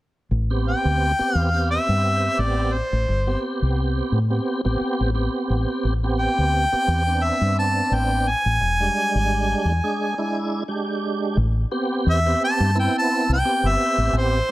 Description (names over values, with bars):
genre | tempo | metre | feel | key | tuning
straight-eighth soul blues | 87 BPM | 4/4 | swing 56% on 16ths | A minor | A4 = 440 Hz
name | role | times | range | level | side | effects
deep dub fingered electric bass | bass | 0.3-14.4 s | E1 to A2 | -21 LUFS | equal | none
tonewheel organ | accompaniment | 0.5-14.5 s | G3 to G#4 | -25 LUFS | right 2 dB | overdrive, chorus vibrato, slow rotary speaker
warm harmonica | melody | 0.7-14.5 s | C5 to A5 | -22 LUFS | equal | overdrive
room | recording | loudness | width
light reverb, studio reverb | none | -19 LUFS | side -17 dB against mid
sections
0.3-11.4 A section; 11.4-14.5 B section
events
break 10.0-11.4; harmonica solo 11.4-14.5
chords
0.3 Am9; 8.6 E7#9; 11.4 Am9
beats
| 0.31 1.00 1.69 2.38 | 3.08 3.77 4.46 5.15 | 5.84 6.53 7.22 7.91 | 8.61 9.30 9.99 10.68 | 11.37 12.06 12.75 13.44 | 14.13